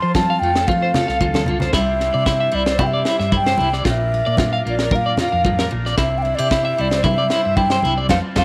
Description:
highlife guitar band; 113 BPM; 4/4; straight; C mixolydian; A4 = 440 Hz
mellow hollow wooden flute; melody; 0.0-8.4 s; D5 to C6; -23 LUFS; equal
picked steel-string acoustic guitar; accompaniment; 0.0-8.4 s; A2 to C5; -30 LUFS; equal
overdriven combo organ; sustained chords; 0.0-8.4 s; C4 to C5; -34 LUFS; equal
electric guitar at the edge of break-up; arpeggios; 0.0-8.4 s; E4 to F5; -26 LUFS; equal; tremolo
hollow-body short-scale fingered electric bass; bass; 0.0-8.4 s; Bb1 to F3; -26 LUFS; equal
tight funk drum kit; drums; 0.1-8.4 s; kick drum, snare drum; -25 LUFS; equal
congas; percussion; 0.2-8.4 s; -27 LUFS; equal
light reverb, small room ambience; -18 LUFS; mono
0.0-8.4 A section
drum fill 1.2-1.7; band accent 8.1-8.4
0.0 F; 1.7 Cadd9; 3.9 Bb; 6.0 Cadd9

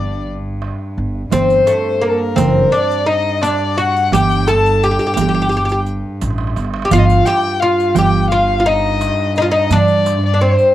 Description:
Arabic maqam ensemble; 86 BPM; 4/4; straight; G maqam nahawand; A4 = 440 Hz
oud; melody; 0.0-10.7 s; A3 to A4; -16 LUFS; equal; cassette tape
warm violin; second line; 0.0-10.7 s; A4 to A5; -19 LUFS; left 6 dB; cassette tape
upright bass; bass; 0.0-10.5 s; F#1 to G2; -18 LUFS; right 1 dB
rich cello; drone; 0.0-10.7 s; G2; -23 LUFS; right 1 dB; cassette tape
darbuka; percussion; 0.3-10.3 s; -21 LUFS; right 7 dB
riq; percussion; 1.3-10.7 s; -26 LUFS; right 9 dB
light reverb; home recording on cassette; -12 LUFS; side -13 dB against mid
0.0-6.9 A section; 6.9-10.7 B section
drum fill 6.2-6.9

